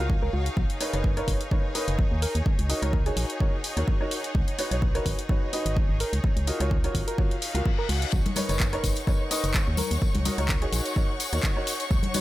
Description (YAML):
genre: piano house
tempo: 127 BPM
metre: 4/4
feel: swing 55% on 16ths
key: unclear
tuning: A4 = 440 Hz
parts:
  - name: clear upright piano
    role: riff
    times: 0.0-12.2 s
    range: D#4 to E#5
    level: -32 LUFS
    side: equal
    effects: sidechain pumping, low-pass filter, dub echo
  - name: organ-like FM bass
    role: bass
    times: 0.0-12.0 s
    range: F#1 to D#2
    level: -27 LUFS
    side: equal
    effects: sidechain pumping
  - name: clear symphonic string section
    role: texture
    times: 0.0-12.2 s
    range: D#4 to F#5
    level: -36 LUFS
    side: left 1 dB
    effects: sidechain pumping
  - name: electronic kick drum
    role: drums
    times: 0.1-12.0 s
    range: none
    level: -25 LUFS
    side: equal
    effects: none
  - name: soft struck synth lead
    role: melody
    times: 0.2-10.8 s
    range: F#4 to A#4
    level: -36 LUFS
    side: equal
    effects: chorus, phaser, cassette tape, dub echo
  - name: house drum kit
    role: drums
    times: 0.5-12.2 s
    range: handclaps, hi-hat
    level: -32 LUFS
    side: left 1 dB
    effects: none
  - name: reverse cymbal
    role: sound effects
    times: 7.4-8.1 s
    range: none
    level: -36 LUFS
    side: left 7 dB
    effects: none
  - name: rich studio violin section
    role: sustained chords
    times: 8.1-12.2 s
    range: C#5 to C#6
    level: -35 LUFS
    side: left 2 dB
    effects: sidechain pumping
  - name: tambourine and congas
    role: percussion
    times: 8.1-12.2 s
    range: none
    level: -33 LUFS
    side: left 3 dB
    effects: none
room: studio reverb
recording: none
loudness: -23 LUFS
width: side -16 dB against mid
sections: 0.0-12.2 A section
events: reverse cymbal 7.4-8.1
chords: 0.0 F#maj7; 0.6 Bmaj9; 2.2 D#m7; 4.3 C#9sus4; 6.2 F#maj7; 8.1 Bmaj9; 9.8 D#m7